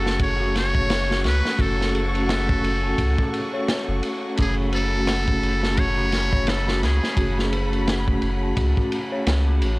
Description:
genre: trip hop.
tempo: 86 BPM.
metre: 4/4.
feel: swing 58% on 16ths.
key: F# minor.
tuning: A4 = 440 Hz.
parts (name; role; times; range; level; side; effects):
trumpet with metal mute; melody; 0.0-7.5 s; G#4 to C#5; -27 LUFS; equal; vintage 12-bit sampler grit, dub echo.
vibraphone with soft mallets; accompaniment; 0.0-9.8 s; A3 to A4; -27 LUFS; equal; tremolo, vintage 12-bit sampler grit, tape echo.
dark symphonic violin section; sustained chords; 0.0-9.8 s; A3 to C#6; -34 LUFS; left 1 dB; none.
dark detuned synth bell; arpeggios; 0.0-9.8 s; F#4 to A5; -32 LUFS; left 2 dB; chorus, phaser, analog delay.
round analog bass; bass; 0.0-9.8 s; F#1 to C#2; -23 LUFS; equal; none.
crunchy breakbeat drum kit; drums; 0.1-9.8 s; kick drum, ride cymbal, snare drum; -25 LUFS; equal; none.
room: studio reverb.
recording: dry, gritty hardware recording, cassette tape.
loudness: -19 LUFS.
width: side -23 dB against mid.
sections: 0.0-9.8 A section.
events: none.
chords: 0.0 F#madd9.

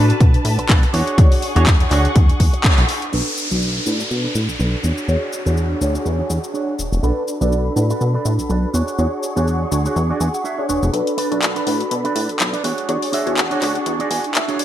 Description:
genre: filtered disco house.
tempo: 123 BPM.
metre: 4/4.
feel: swing 56% on 16ths.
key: B dorian.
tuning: A4 = 442 Hz.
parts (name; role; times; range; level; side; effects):
funky polysynth comp; accompaniment; 0.0-14.6 s; D4 to C#6; -24 LUFS; equal; chorus, phaser, cassette tape, sidechain pumping, low-pass filter.
clear studio string section; sustained chords; 0.0-14.6 s; D4 to C#6; -28 LUFS; equal; sidechain pumping, low-pass filter.
electric guitar with an envelope filter; riff; 0.0-14.6 s; D4 to G#5; -26 LUFS; right 5 dB; sidechain pumping, low-pass filter.
plucky analog bass; bass; 0.0-14.6 s; E1 to B2; -19 LUFS; equal; sidechain pumping, high-pass filter, low-pass filter.
house drum kit; drums; 0.1-14.6 s; cabasa, crash cymbal, handclaps, hi-hat; -23 LUFS; left 1 dB; overdrive, sidechain pumping on hats, studio reverb, sidechain pumping on cymbals, sidechain pumping on perc.
electronic kick drum; drums; 0.2-2.8 s; none; -13 LUFS; equal; studio reverb.
downlifter and riser; sound effects; 3.1-7.0, 12.1-14.6 s; none; -28 LUFS; equal; none.
room: light reverb, digital ambience.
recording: bright 1980s-style digital production.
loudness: -16 LUFS.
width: side -12 dB against mid.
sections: 0.0-3.1 A section; 3.1-10.9 B section; 10.9-14.6 C section.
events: band accent 2.6; filter sweep 3.1-10.9, 10.9-14.6; clean electric guitar fill 10.0-10.9, 13.9-14.6; build-up 10.9-14.6.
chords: 0.0 Bm7; 0.9 E13; 3.1 Bm7; 4.8 E13; 7.0 Bm7; 8.7 E13; 10.9 Bm7; 12.6 E13.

